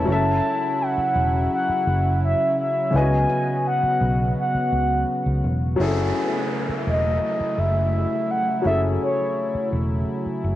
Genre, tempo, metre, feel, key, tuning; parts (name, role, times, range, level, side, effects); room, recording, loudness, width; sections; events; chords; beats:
contemporary R&B; 84 BPM; 4/4; straight; F# dorian; A4 = 440 Hz
mellow horn-like synth lead; melody; 0.0-9.7 s; C#5 to A5; -23 LUFS; equal; chorus, cassette tape
warm grand piano; accompaniment; 0.0-10.6 s; C#3 to E5; -27 LUFS; left 2 dB; cassette tape
warm analog pad; sustained chords; 0.0-10.6 s; C#3 to F#4; -27 LUFS; equal; chorus, cassette tape
vintage muted fingered electric bass; bass; 0.0-10.6 s; E1 to C#2; -22 LUFS; equal
handpan; texture; 0.0-5.5 s; C#4 to F#4; -42 LUFS; right 1 dB
downlifter; sound effects; 5.8-10.6 s; -33 LUFS; right 1 dB
light reverb, small room ambience; home recording on cassette; -19 LUFS; side -14 dB against mid
0.0-5.8 A section; 5.8-10.6 B section
0.1 F#m7; 2.9 C#7sus4; 5.8 F#m9
| 0.08 0.80 1.51 2.22 | 2.94 3.65 4.37 5.08 | 5.79 6.51 7.22 7.94 | 8.65 9.37 10.08